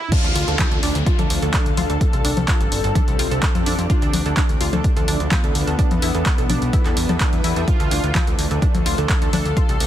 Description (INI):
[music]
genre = melodic techno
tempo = 127 BPM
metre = 4/4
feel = straight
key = D dorian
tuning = A4 = 440 Hz
[part]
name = analog synth brass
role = melody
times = 0.0-9.9 s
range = B3 to A4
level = -29 LUFS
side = left 2 dB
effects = chorus, sidechain pumping, ping-pong delay
[part]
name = punchy analog drum machine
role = drums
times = 0.0-9.9 s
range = congas, crash cymbal, handclaps, hi-hat, toms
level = -24 LUFS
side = left 2 dB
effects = none
[part]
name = lush unison pad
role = sustained chords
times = 0.5-9.9 s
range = E3 to D4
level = -31 LUFS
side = right 1 dB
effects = chorus, sidechain pumping
[part]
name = tight sequenced synth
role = arpeggios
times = 0.1-9.8 s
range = D4 to A4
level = -28 LUFS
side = right 2 dB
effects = chorus, sidechain pumping, digital delay
[part]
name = electronic kick drum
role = drums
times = 0.1-9.7 s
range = none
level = -19 LUFS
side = equal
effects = none
[part]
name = downlifter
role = sound effects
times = 0.1-3.9 s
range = none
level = -28 LUFS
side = left 2 dB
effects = none
[part]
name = granular cloud pad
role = texture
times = 1.0-9.9 s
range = C4 to D6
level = -31 LUFS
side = left 1 dB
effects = built-in reverb, sidechain pumping
[part]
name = plucky analog bass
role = bass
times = 0.2-9.9 s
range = G1 to F2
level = -23 LUFS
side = equal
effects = tube saturation, sidechain pumping
[sound]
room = little or no reverb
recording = dense, heavily limited modern master, high-pass filter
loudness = -16 LUFS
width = side -11 dB against mid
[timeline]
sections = 0.1-9.9 A section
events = drop 0.1-9.9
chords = 0.1 Dm; 2.0 Csus2; 3.9 Dm; 5.8 Em7; 7.7 Dm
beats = | 0.12 0.59 1.06 1.54 | 2.01 2.48 2.95 3.43 | 3.90 4.37 4.84 5.32 | 5.79 6.26 6.73 7.21 | 7.68 8.15 8.62 9.10 | 9.57